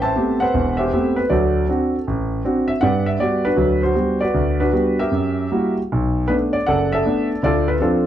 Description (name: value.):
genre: solo jazz.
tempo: 158 BPM.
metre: 4/4.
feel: swing 64% on 8ths, rubato.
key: G major.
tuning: A4 = 440 Hz.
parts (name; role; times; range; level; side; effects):
warm concert grand piano; solo; 0.0-8.1 s; E1 to A5; -16 LUFS; equal; none.
room: wet club reverb, RT60 0.5 s.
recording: dark, warm production.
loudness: -17 LUFS.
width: side -11 dB against mid.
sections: 0.0-5.9 A section; 5.9-8.1 B section.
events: none.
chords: 0.0 Am9; 1.3 D7; 2.8 Gmaj7; 5.1 F#7b9; 5.9 Bm7; 7.4 Dm7.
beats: 0.17 0.56 0.94 | 1.32 1.70 2.08 2.46 | 2.83 3.21 3.59 3.97 | 4.36 4.74 5.12 5.52 | 5.91 6.29 6.68 7.06 | 7.43 7.81.